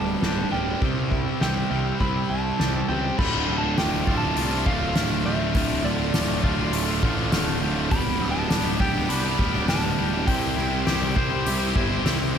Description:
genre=post-rock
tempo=102 BPM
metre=4/4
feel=straight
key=D dorian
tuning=A4 = 440 Hz
part: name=electric slide guitar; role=melody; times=0.0-12.0 s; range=D5 to B5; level=-31 LUFS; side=right 1 dB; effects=tape echo
part: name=shimmering ambient pad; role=sustained chords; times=0.0-12.4 s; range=D4 to C6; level=-39 LUFS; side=equal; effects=none
part: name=glockenspiel with rubber mallets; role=arpeggios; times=0.0-12.4 s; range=D6 to A6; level=-37 LUFS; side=right 2 dB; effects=tape echo
part: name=twangy electric guitar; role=arpeggios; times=0.0-12.4 s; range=D2 to C5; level=-34 LUFS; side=left 3 dB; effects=spring reverb, tape echo
part: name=distorted electric guitar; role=riff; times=0.0-12.4 s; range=D2 to C5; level=-29 LUFS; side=left 13 dB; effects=overdrive
part: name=fuzz guitar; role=riff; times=0.0-12.4 s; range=D2 to C5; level=-28 LUFS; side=right 11 dB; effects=distortion
part: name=fuzz picked electric bass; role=bass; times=0.0-12.4 s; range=D1 to C#2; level=-28 LUFS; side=equal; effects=overdrive
part: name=soft-mallet drum kit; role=drums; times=0.2-12.2 s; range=crash cymbal, hi-hat, kick drum, ride cymbal, snare drum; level=-27 LUFS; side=equal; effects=none
room=light reverb, studio reverb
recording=none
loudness=-21 LUFS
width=side -8 dB against mid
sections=0.0-3.2 A section; 3.2-12.4 B section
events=build-up 0.0-3.2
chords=0.0 G/D; 0.8 C; 3.2 Dm; 7.9 G/D; 10.3 C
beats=0.23 | 0.82 1.41 2.00 2.59 | 3.19 3.78 4.37 4.96 | 5.55 6.14 6.73 7.32 | 7.91 8.51 9.10 9.69 | 10.28 10.87 11.46 12.05

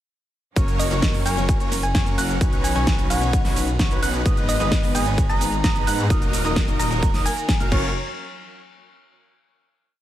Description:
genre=EDM, festival progressive house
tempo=130 BPM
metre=4/4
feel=straight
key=F# major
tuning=A4 = 436 Hz
part: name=picked steel-string acoustic guitar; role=accompaniment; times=0.6-7.9 s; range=A#3 to C#5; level=-31 LUFS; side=left 4 dB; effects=sidechain pumping
part: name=rich studio string section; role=sustained chords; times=0.6-7.9 s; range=D#3 to C#5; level=-34 LUFS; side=right 2 dB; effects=none
part: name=dark concert grand piano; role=arpeggios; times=0.6-7.9 s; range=C#6 to F#6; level=-32 LUFS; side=right 3 dB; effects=sidechain pumping, ping-pong delay
part: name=big supersaw lead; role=riff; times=0.6-7.9 s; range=F#3 to F#5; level=-28 LUFS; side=equal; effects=sidechain pumping, ping-pong delay
part: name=wide detuned saw bass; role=bass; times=0.6-7.9 s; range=D#1 to G#2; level=-26 LUFS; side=equal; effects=chorus, sidechain pumping
part: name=big-room dance drum kit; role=drums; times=0.6-7.8 s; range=crash cymbal, hi-hat, ride cymbal, shaker, snare drum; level=-28 LUFS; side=equal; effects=none
part: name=electronic kick drum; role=drums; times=0.6-7.8 s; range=none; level=-21 LUFS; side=equal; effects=none
part: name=thumb-piano-like synth pluck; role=melody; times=0.8-7.6 s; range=D#5 to A#5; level=-28 LUFS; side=equal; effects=chorus, ping-pong delay
room=little or no reverb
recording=none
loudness=-18 LUFS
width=side -12 dB against mid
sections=0.6-7.9 drop; 7.9-9.8 final hit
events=drop 0.6-7.9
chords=0.6 F#; 2.4 Badd9; 4.3 G#m; 6.1 D#m; 7.7 F#; 7.9 N.C.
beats=| 0.56 1.02 1.49 1.95 | 2.41 2.87 3.33 3.79 | 4.26 4.72 5.18 5.64 | 6.10 6.56 7.03 7.49

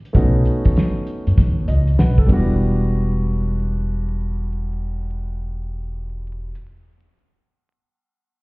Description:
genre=hip hop, jazz-hop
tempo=98 BPM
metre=4/4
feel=swing 65% on 16ths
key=E dorian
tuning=A4 = 440 Hz
part: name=dark baby grand piano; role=accompaniment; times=0.1-6.5 s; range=G3 to F#5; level=-24 LUFS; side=equal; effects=none
part: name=upright bass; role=bass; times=0.1-6.5 s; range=E1 to F#2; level=-20 LUFS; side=equal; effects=none
part: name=cloth-damped thuddy drum kit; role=drums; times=0.1-2.5 s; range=hi-hat, kick drum, ride cymbal, snare drum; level=-15 LUFS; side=equal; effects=none
room=light reverb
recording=heard muffled through a wall, stone room reverb, vinyl crackle, EQ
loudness=-16 LUFS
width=side -25 dB against mid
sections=0.0-2.6 A section; 2.6-5.0 B section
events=grand piano fill 1.4-2.6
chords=0.1 B7; 2.3 Em7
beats=| 0.15 0.76 1.37 1.98 | 2.60 3.21 3.82 4.43

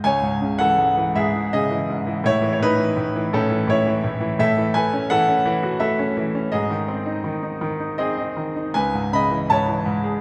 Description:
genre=classical, lyrical solo piano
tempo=83 BPM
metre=3/4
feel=uneven beats, rubato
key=C# minor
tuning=A4 = 440 Hz
part: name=bright concert grand piano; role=solo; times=0.0-10.2 s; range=C#2 to B5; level=-21 LUFS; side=equal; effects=none
room=wet church reverb, RT60 3.0 s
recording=recorded in a church or concert hall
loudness=-21 LUFS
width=mono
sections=0.0-10.2 A section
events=none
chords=0.0 C#m; 2.2 A; 4.4 F#m7/A; 6.5 G#; 8.7 C#m7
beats=| 0.04 0.79 1.52 | 2.25 2.97 3.69 | 4.40 5.10 5.80 | 6.51 7.23 7.98 | 8.74 9.49

